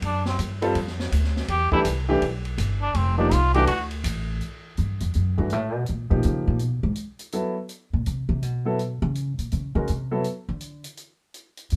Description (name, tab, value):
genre	jazz, small-group swing and bop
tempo	164 BPM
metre	4/4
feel	swing 64% on 8ths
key	unclear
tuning	A4 = 441 Hz
part	upright bass	bass	0.0-11.8 s	F1 to D3	-27 LUFS	equal	none
part	open jazz drum kit	drums	0.0-11.8 s	hi-hat, kick drum, ride cymbal, snare drum	-36 LUFS	equal	none
part	trombone with metal mute	second line	0.1-3.8 s	C4 to G4	-27 LUFS	equal	none
part	warm baby grand piano	accompaniment	0.6-10.2 s	E3 to A#4	-27 LUFS	equal	none
room	moderate studio reverb, RT60 0.5 s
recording	none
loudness	-25 LUFS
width	mono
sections	0.0-4.4 A section; 4.4-11.8 A section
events	trombone solo 0.0-4.4; upright bass solo 4.4-11.8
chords	0.0 F#dim; 0.8 Dm; 1.5 Em7; 2.9 F5; 3.7 D5; 4.4 Gmaj7; 5.9 C#9; 7.3 Cmaj7#11; 8.8 Bbm; 9.5 F#7; 10.2 N.C.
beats	| 0.03 0.39 0.76 1.12 | 1.49 1.85 2.22 2.58 | 2.95 3.31 3.68 4.04 | 4.41 4.77 5.13 5.50 | 5.87 6.23 6.59 6.96 | 7.33 7.69 8.05 8.42 | 8.78 9.15 9.51 9.88 | 10.24 10.61 10.97 11.34 | 11.71